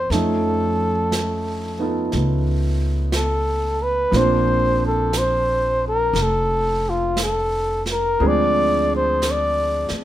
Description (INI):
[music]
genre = jazz ballad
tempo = 59 BPM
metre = 4/4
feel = swing 66% on 8ths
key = Bb major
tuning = A4 = 440 Hz
[part]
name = mellow flugelhorn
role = melody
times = 0.0-9.9 s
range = F4 to D5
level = -20 LUFS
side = left 1 dB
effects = none
[part]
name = warm baby grand piano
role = accompaniment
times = 0.0-10.0 s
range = Eb3 to C5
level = -24 LUFS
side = right 2 dB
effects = none
[part]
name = upright bass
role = bass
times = 0.0-9.9 s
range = F1 to F2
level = -24 LUFS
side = equal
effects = none
[part]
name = jazz brush drum kit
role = drums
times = 0.1-10.0 s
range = brushed snare drum, hi-hat, snare drum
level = -29 LUFS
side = right 2 dB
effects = none
[sound]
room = light reverb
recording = none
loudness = -18 LUFS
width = side -13 dB against mid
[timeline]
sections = 0.0-10.0 A section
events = none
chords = 0.1 Faug7; 4.1 Bbadd9; 8.2 Dm7b5